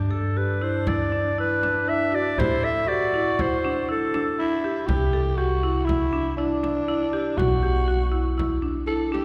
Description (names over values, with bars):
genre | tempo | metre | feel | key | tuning
contemporary instrumental, chamber music in an uneven meter | 120 BPM | 5/4 | straight | unclear | A4 = 440 Hz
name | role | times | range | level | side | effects
clear clarinet | melody | 0.0-4.6 s | G4 to E5 | -27 LUFS | equal | none
growling tenor saxophone | second line | 0.0-9.2 s | D4 to A4 | -30 LUFS | equal | none
upright bass | bass | 0.0-9.2 s | B1 to A2 | -30 LUFS | equal | none
marimba with hard mallets | arpeggios | 0.1-9.2 s | D4 to A4 | -30 LUFS | equal | none
frame drum | percussion | 0.9-9.2 s | none | -35 LUFS | equal | none
room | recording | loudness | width
wet concert hall reverb, RT60 2.6 s | none | -24 LUFS | mono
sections
0.0-9.2 A section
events
none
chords
0.0 G; 2.4 Am; 4.9 Cadd9; 7.4 Bm